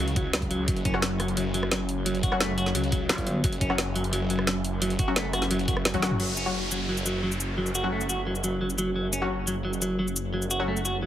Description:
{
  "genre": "dark technical drum and bass",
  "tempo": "174 BPM",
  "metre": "4/4",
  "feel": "straight",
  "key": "unclear",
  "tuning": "A4 = 439 Hz",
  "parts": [
    { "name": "deep dark ambient pad", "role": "sustained chords", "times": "0.0-11.1 s", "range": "F#3 to E5", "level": "-34 LUFS", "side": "left 1 dB", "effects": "chorus, built-in reverb, sidechain pumping" },
    { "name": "clean electric guitar", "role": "arpeggios", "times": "0.0-11.1 s", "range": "F#3 to F#4", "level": "-30 LUFS", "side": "right 1 dB", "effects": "sidechain pumping, low-pass filter, dub echo" },
    { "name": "snarling distorted saw bass", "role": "bass", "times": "0.0-11.1 s", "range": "F#1 to C#2", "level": "-31 LUFS", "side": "equal", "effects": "distortion, tube saturation, sidechain pumping" },
    { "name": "drum and bass drum kit", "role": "drums", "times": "0.1-10.9 s", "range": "cabasa, crash cymbal, hi-hat, rim click, snare drum, toms", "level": "-29 LUFS", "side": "equal", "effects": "overdrive" },
    { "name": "electronic kick drum", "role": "drums", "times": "0.2-6.0 s", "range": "none", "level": "-28 LUFS", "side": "equal", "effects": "overdrive" },
    { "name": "orchestra-hit-like synth stab", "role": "stabs", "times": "0.9-10.6 s", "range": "F#3 to F#4", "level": "-32 LUFS", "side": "left 2 dB", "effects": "built-in reverb, dub echo" },
    { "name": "metallic wobble bass", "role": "bass", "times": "3.1-3.4 s", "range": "G1", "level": "-27 LUFS", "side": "equal", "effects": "distortion, chorus, tube saturation" },
    { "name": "downlifter", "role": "sound effects", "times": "6.2-9.0 s", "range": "none", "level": "-35 LUFS", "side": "equal", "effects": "none" }
  ],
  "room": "moderate digital room reverb, RT60 0.9 s",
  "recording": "heavily compressed radio sound, multiband compression",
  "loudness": "-24 LUFS",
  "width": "side -11 dB against mid",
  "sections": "0.0-6.2 A section; 6.2-11.1 B section",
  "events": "drum fill 5.9",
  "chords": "0.0 F#5"
}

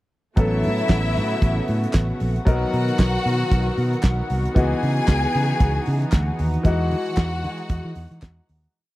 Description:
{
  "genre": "disco",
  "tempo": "115 BPM",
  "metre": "4/4",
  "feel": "swing 56% on 16ths",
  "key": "unclear",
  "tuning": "A4 = 440 Hz",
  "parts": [
    { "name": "bright studio string section", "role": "second line", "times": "0.4-8.4 s", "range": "E4 to G#5", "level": "-27 LUFS", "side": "left 2 dB", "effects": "none" },
    { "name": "clear baby grand piano", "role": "accompaniment", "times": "0.4-8.8 s", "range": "E3 to A#4", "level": "-27 LUFS", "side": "left 2 dB", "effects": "none" },
    { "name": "dark studio string section", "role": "sustained chords", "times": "0.4-8.7 s", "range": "C#3 to A#4", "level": "-28 LUFS", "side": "right 1 dB", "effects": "none" },
    { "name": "fingered electric bass", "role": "bass", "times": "0.4-8.7 s", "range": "A1 to E3", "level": "-23 LUFS", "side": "equal", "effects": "none" },
    { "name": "damped 70s drum kit", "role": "drums", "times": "0.4-8.7 s", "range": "handclaps, hi-hat, kick drum, snare drum", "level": "-18 LUFS", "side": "equal", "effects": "none" },
    { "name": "group handclap", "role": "percussion", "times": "5.1-8.4 s", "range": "none", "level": "-39 LUFS", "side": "left 13 dB", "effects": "none" }
  ],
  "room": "small room ambience",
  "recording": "dry, close 1970s-style studio recording",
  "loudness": "-19 LUFS",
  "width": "side -17 dB against mid",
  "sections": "0.4-8.7 pre-chorus",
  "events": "fade-out 6.7-8.7",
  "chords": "0.4 A69; 2.5 Bmaj7; 4.6 C#m11; 6.7 Emaj9"
}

